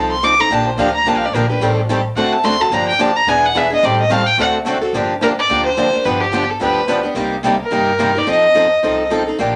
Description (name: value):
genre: acoustic string swing (jazz manouche)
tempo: 216 BPM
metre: 4/4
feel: swing 57% on 8ths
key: G minor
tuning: A4 = 440 Hz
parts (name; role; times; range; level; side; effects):
- warm violin; melody; 0.0-9.1 s; G4 to D6; -18 LUFS; equal; none
- picked steel-string acoustic guitar; accompaniment; 0.0-9.6 s; C3 to A4; -22 LUFS; equal; none
- picked swing-style acoustic guitar; accompaniment; 0.0-9.6 s; C3 to B4; -24 LUFS; equal; none
- upright bass; bass; 0.0-9.6 s; E1 to G2; -28 LUFS; equal; none
room: wet studio ambience, RT60 0.5 s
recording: none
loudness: -16 LUFS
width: mono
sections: 0.0-4.9 A section; 4.9-9.6 B section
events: violin solo 0.0-4.9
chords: 0.0 F7; 0.5 Bb69; 1.6 Am7b5; 2.2 D7; 2.7 Gm7; 3.3 E7; 3.8 Am7b5; 4.4 D7; 4.9 Gm7; 6.1 G7; 7.2 Cm7; 8.3 F7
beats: 0.22 | 0.50 0.78 1.05 1.33 | 1.61 1.89 2.17 2.44 | 2.72 3.00 3.27 3.55 | 3.83 4.11 4.39 4.66 | 4.94 5.22 5.50 5.78 | 6.05 6.33 6.61 6.89 | 7.17 7.45 7.72 8.00 | 8.28 8.56 8.84 9.12 | 9.39